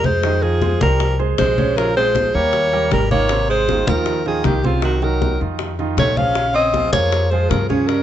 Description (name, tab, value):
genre	Afro-Cuban jazz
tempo	157 BPM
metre	4/4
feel	straight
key	unclear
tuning	A4 = 441 Hz
part	clear alto saxophone	melody	0.0-8.0 s	F4 to F5	-19 LUFS	left 2 dB	plate reverb
part	breathy tenor saxophone	second line	0.0-8.0 s	Db3 to Db4	-24 LUFS	right 4 dB	none
part	upright bass	bass	0.0-8.0 s	Ab1 to G2	-21 LUFS	equal	none
part	bongos	percussion	0.0-8.0 s	none	-27 LUFS	left 7 dB	none
part	congas	percussion	0.0-8.0 s	none	-24 LUFS	left 1 dB	none
part	clear baby grand piano	accompaniment	0.2-8.0 s	C3 to Eb5	-24 LUFS	right 5 dB	none
room	moderate studio reverb, RT60 0.6 s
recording	nothing above 8.0 kHz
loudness	-15 LUFS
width	side -11 dB against mid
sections	0.2-8.0 A section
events	none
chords	0.2 Fm9; 1.8 Bbm7; 2.5 Eb7; 3.3 Ab69; 4.8 Cm7b5; 5.6 Bbmadd11; 6.4 Bbm9